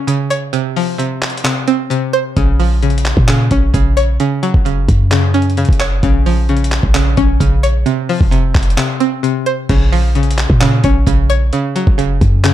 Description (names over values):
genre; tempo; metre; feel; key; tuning
hip hop, trap; 131 BPM; 4/4; half-time; Bb minor; A4 = 441 Hz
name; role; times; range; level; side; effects
string-like resonator pluck; accompaniment; 0.0-12.5 s; C3 to Db5; -16 LUFS; equal; chorus
dusty soul sampler-style drum kit; drums; 0.1-12.5 s; crash cymbal, handclaps, hi-hat, kick drum; -16 LUFS; equal; none
clean 808-style bass; bass; 2.4-12.5 s; F1 to Bb2; -14 LUFS; equal; none
room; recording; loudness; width
digital ambience; dark, warm production; -11 LUFS; side -12 dB against mid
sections
0.0-9.7 A section; 9.7-12.5 B section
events
break 0.0-2.4, 8.8-9.7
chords
0.0 N.C.; 0.5 F5; 2.4 Bbm; 4.2 Gb5; 6.0 Bbm; 7.9 F5; 9.7 Bbm; 11.5 Gb5